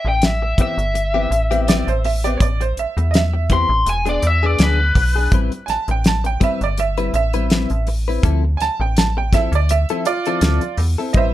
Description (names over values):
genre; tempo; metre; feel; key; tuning
straight-eighth soul blues; 82 BPM; 4/4; swing 55% on 16ths; A minor; A4 = 440 Hz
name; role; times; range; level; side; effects
lead guitar through a small cranked amp; melody; 0.0-5.3 s; B4 to C6; -20 LUFS; left 2 dB; overdrive
metallic FM bass; bass; 0.0-11.3 s; E1 to E2; -19 LUFS; equal; none
direct-recorded clean electric guitar; stabs; 0.1-11.3 s; E3 to B4; -24 LUFS; left 6 dB; wide subtle chorus
damped 70s drum kit; drums; 0.2-11.3 s; hi-hat, kick drum, snare drum; -19 LUFS; equal; none
bright upright piano; second line; 1.7-11.3 s; F4 to A5; -22 LUFS; right 6 dB; none
room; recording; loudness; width
light reverb; none; -15 LUFS; side -14 dB against mid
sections
0.0-5.3 A section; 5.3-11.3 B section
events
upright piano solo 5.3-11.3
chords
0.0 Am9; 3.9 E7; 5.3 Am9; 8.2 Dm9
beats
0.22 0.95 1.68 | 2.41 3.14 3.87 4.59 | 5.32 6.05 6.78 7.51 | 8.24 8.96 9.69 10.42 | 11.15